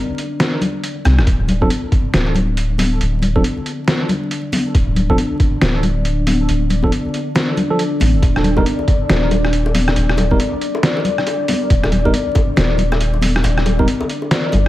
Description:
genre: deep dubstep.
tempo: 138 BPM.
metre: 4/4.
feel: swing 61% on 16ths, half-time.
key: unclear.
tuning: A4 = 440 Hz.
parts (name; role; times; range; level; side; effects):
deep dark ambient pad; sustained chords; 0.0-14.7 s; D4 to D5; -23 LUFS; left 2 dB; chorus, built-in reverb.
trip hop sampler-style drum kit; drums; 0.2-14.7 s; hi-hat, rim click, snare drum; -20 LUFS; equal; studio reverb.
congas and bongos; percussion; 0.4-14.6 s; none; -21 LUFS; left 1 dB; dub echo.
soft dub sub bass; bass; 1.1-14.7 s; D1 to C2; -17 LUFS; equal; none.
electronic kick drum; drums; 1.3-13.9 s; none; -17 LUFS; equal; studio reverb.
bright tine electric piano; stabs; 1.6-13.9 s; F3 to Bb4; -24 LUFS; right 2 dB; dub echo.
room: light reverb.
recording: echo-heavy mix, vinyl crackle.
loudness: -14 LUFS.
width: side -15 dB against mid.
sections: 0.0-14.7 A section.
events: drum fill 1.1.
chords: none.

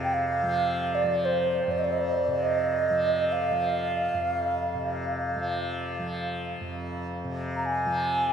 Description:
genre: world meditative, free-time meditation music.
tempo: free time.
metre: none.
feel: none.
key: unclear.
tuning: A4 = 441 Hz.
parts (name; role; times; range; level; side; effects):
low xiao; melody; 0.0-8.3 s; C5 to Bb5; -26 LUFS; right 2 dB; none.
tanpura; drone; 0.0-8.3 s; F2 to F3; -31 LUFS; equal; none.
room: wet cathedral reverb, RT60 6.9 s.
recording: dark, warm production.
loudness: -25 LUFS.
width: side -7 dB against mid.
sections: 0.0-8.3 A section.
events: none.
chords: none.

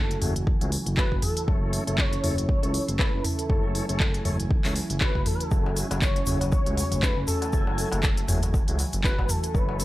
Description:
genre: afro house.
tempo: 119 BPM.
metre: 4/4.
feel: swing 57% on 16ths.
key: F# minor.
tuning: A4 = 440 Hz.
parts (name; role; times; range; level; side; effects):
expressive synth lead; melody; 0.0-9.8 s; A4 to E5; -33 LUFS; left 1 dB; ensemble chorus, tape echo.
warm analog pad; sustained chords; 0.0-9.8 s; C#3 to G#5; -38 LUFS; right 2 dB; lush chorus, sidechain pumping.
smooth gliding synth bass; bass; 0.0-9.8 s; F#1 to C#2; -29 LUFS; equal; sidechain pumping.
afro-pop drum kit; drums; 0.1-9.8 s; handclaps, hi-hat, toms; -30 LUFS; equal; studio reverb.
marimba with soft mallets; arpeggios; 0.2-9.8 s; E3 to F#4; -35 LUFS; equal; vintage 12-bit sampler grit, sidechain pumping, tape echo.
tonewheel organ; stabs; 0.2-9.8 s; A3 to G#5; -37 LUFS; left 2 dB; fast rotary speaker, sidechain pumping, tape echo.
electronic kick drum; drums; 0.5-9.7 s; none; -25 LUFS; equal; studio reverb.
tube shaker; percussion; 5.5-9.8 s; none; -38 LUFS; left 1 dB; none.
darbuka; percussion; 5.7-9.8 s; none; -34 LUFS; left 1 dB; none.
room: digital ambience.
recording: dry, gritty hardware recording.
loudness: -22 LUFS.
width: side -17 dB against mid.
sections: 0.0-9.8 A section.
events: none.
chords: 0.0 F#m9.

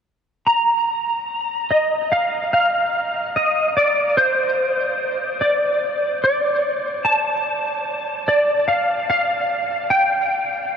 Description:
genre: rock.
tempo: 73 BPM.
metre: 4/4.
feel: straight.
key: G minor.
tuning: A4 = 440 Hz.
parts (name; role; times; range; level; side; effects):
clean lap steel guitar; melody; 0.5-10.8 s; C5 to Bb5; -17 LUFS; equal; ensemble chorus, tape echo.
room: wet huge ambient reverb, RT60 8.2 s.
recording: dreamy mix soaked in reverb.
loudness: -17 LUFS.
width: side -7 dB against mid.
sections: 0.5-10.8 A section.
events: none.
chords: none.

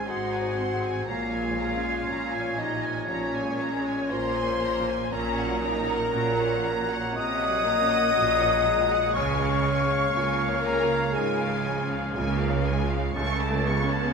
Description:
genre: cinematic, emotional film score for orchestra.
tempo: 60 BPM.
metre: 4/4.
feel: rubato.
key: Db major.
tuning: A4 = 440 Hz.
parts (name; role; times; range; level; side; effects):
rich studio violin section; melody; 0.0-14.1 s; F5 to C#6; -35 LUFS; left 3 dB; none.
clear oboe; second line; 0.0-14.1 s; F5 to A5; -34 LUFS; right 1 dB; none.
clear studio violin section; second line; 0.0-12.1 s; Db5 to Eb6; -36 LUFS; equal; none.
silver concert flute; second line; 0.0-12.2 s; Db5 to Eb6; -32 LUFS; equal; none.
warm clarinet; second line; 0.0-14.1 s; C5 to Db5; -38 LUFS; equal; none.
felt-muted upright piano; accompaniment; 0.0-14.1 s; Db2 to Db5; -35 LUFS; left 1 dB; none.
rich studio viola section; accompaniment; 0.0-14.1 s; C3 to Eb4; -35 LUFS; right 1 dB; none.
warm French horn section; sustained chords; 0.0-12.1 s; Db4 to Eb5; -28 LUFS; left 4 dB; none.
rich studio cello section; bass; 0.1-14.1 s; Ab2 to Db3; -32 LUFS; right 4 dB; none.
warm studio double bass section; bass; 0.1-14.1 s; Ab1 to Db2; -32 LUFS; right 4 dB; none.
room: wet recital hall reverb, RT60 1.7 s.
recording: minimal, uncompressed stereo recording.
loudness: -23 LUFS.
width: side -5 dB against mid.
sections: 0.0-14.1 A section.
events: none.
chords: 0.0 Ab; 1.1 Bbm7; 5.1 Gb/Bb; 9.1 Db; 13.2 A/C#.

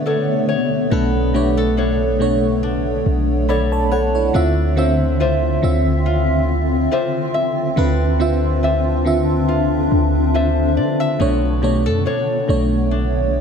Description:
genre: R&B.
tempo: 70 BPM.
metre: 4/4.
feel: swing 54% on 16ths.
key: unclear.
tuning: A4 = 440 Hz.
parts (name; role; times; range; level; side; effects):
FM electric piano with soft pad layer; accompaniment; 0.0-13.4 s; B2 to B5; -20 LUFS; right 2 dB; chorus, tremolo.
granular cloud pad; sustained chords; 0.0-13.4 s; D3 to E5; -22 LUFS; left 2 dB; built-in reverb.
nylon-string guitar; arpeggios; 0.0-13.4 s; B3 to E5; -24 LUFS; left 4 dB; ping-pong delay.
warm 808-style bass; bass; 0.0-13.4 s; B1 to D3; -20 LUFS; equal; none.
room: moderate concert hall reverb, RT60 2.4 s.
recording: none.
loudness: -15 LUFS.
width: side -6 dB against mid.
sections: 0.0-13.4 A section.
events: none.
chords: 0.0 Bm9; 4.3 Dm9; 11.2 Bm9.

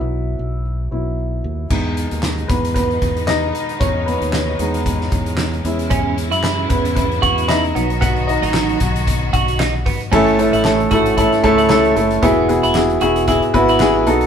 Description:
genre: piano-driven pop.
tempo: 114 BPM.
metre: 4/4.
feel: swing 56% on 16ths.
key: unclear.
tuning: A4 = 437 Hz.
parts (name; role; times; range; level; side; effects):
warm upright piano; accompaniment; 0.0-14.3 s; A2 to B5; -17 LUFS; equal; none.
fingered electric bass; bass; 0.0-14.3 s; E1 to F#2; -23 LUFS; equal; none.
clear studio string section; sustained chords; 1.7-10.1 s; B2 to F#4; -26 LUFS; right 1 dB; none.
loose indie drum kit; drums; 1.7-14.3 s; crash cymbal, handclaps, hi-hat, kick drum, snare drum; -21 LUFS; left 1 dB; none.
twelve-string electric guitar; riff; 5.9-13.9 s; B3 to F#4; -21 LUFS; right 3 dB; none.
room: moderate studio reverb, RT60 0.8 s.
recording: band playing live in one room.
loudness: -14 LUFS.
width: side -8 dB against mid.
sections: 0.0-1.7 A section; 1.7-10.1 B section; 10.1-14.3 C section.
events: upright piano solo 0.0-1.7, 1.7-10.1; upright piano fill 13.3-14.3.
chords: 0.0 Bsus4; 1.7 G#m; 5.7 C#m/E; 7.8 B; 10.1 A; 12.2 Eadd9.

